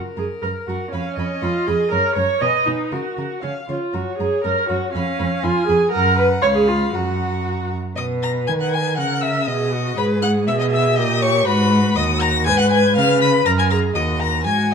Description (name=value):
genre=quick classical-period movement for string quartet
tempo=120 BPM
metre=2/4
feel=straight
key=F# major, B major from 8.0 s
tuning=A4 = 440 Hz
part: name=warm violin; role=second line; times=0.0-14.7 s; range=A#4 to B5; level=-25 LUFS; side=left 4 dB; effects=none
part: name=clear violin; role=melody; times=0.2-14.7 s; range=E#5 to B6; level=-25 LUFS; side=left 6 dB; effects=none
part: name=rich viola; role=accompaniment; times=0.2-14.7 s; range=C#4 to D#5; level=-20 LUFS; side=right 2 dB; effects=none
part: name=rich cello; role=bass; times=0.2-14.7 s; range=C#2 to D#3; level=-21 LUFS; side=right 2 dB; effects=none
room=wet stone room reverb, RT60 1.2 s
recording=dark, warm production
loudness=-16 LUFS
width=side -6 dB against mid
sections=0.0-8.0 A section; 8.0-14.7 B section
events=none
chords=0.0 F#; 0.9 C#7/E#; 1.9 F#; 2.4 G#m/B (rootless); 2.9 F#; 3.4 C#; 3.9 F#; 4.9 C#7/E#; 5.9 F#; 6.4 C#7; 7.0 F#; 8.0 B; 9.0 A#dim/C#; 9.5 B; 10.0 G#m; 11.0 Gdim/Bb; 11.5 G#m7; 12.0 D#m; 12.5 G#m; 13.0 C#7; 13.5 F#; 14.0 D#m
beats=0.43 | 0.93 1.43 | 1.92 2.42 | 2.92 3.44 | 3.94 4.45 | 4.95 5.44 | 5.94 6.44 | 6.95 7.46 | 7.98 8.48 | 8.98 9.48 | 9.98 10.48 | 10.98 11.47 | 11.97 12.46 | 12.96 13.46 | 13.96 14.46